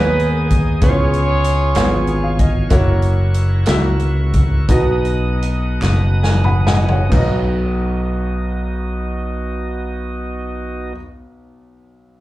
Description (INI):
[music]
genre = slow gospel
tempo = 42-64 BPM (dotted quarters)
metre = 6/8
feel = straight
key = B major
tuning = A4 = 440 Hz
[part]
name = clean lap steel guitar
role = melody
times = 0.0-2.4 s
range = B4 to C#5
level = -24 LUFS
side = right 5 dB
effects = slapback echo
[part]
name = clear horn section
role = melody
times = 0.0-2.4 s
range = D#4 to C#5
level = -21 LUFS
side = equal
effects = slapback echo
[part]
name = warm upright piano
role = accompaniment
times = 0.0-12.2 s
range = B1 to B5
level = -22 LUFS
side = equal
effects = none
[part]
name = bright tonewheel organ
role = sustained chords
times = 0.0-10.9 s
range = B3 to D#6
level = -28 LUFS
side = right 2 dB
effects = slow rotary speaker
[part]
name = fingered electric bass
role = bass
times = 0.0-10.9 s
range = F#1 to D#2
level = -17 LUFS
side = equal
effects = none
[part]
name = swinging big-band drum kit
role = drums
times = 0.2-7.3 s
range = crash cymbal, hi-hat, kick drum, snare drum, toms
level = -18 LUFS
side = equal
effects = none
[part]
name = group handclap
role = percussion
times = 1.8-7.6 s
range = none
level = -32 LUFS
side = right 2 dB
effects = none
[sound]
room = little or no reverb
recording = live gig heard through the venue's PA, club reverb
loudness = -14 LUFS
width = side -16 dB against mid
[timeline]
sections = 0.0-7.1 A section; 7.1-12.2 B section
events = upright piano fill 1.8-2.7, 5.8-7.1; slowing down 2.7-7.1; drum fill 5.8-7.1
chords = 0.0 G#m; 0.8 C#7; 2.7 F#7; 4.7 B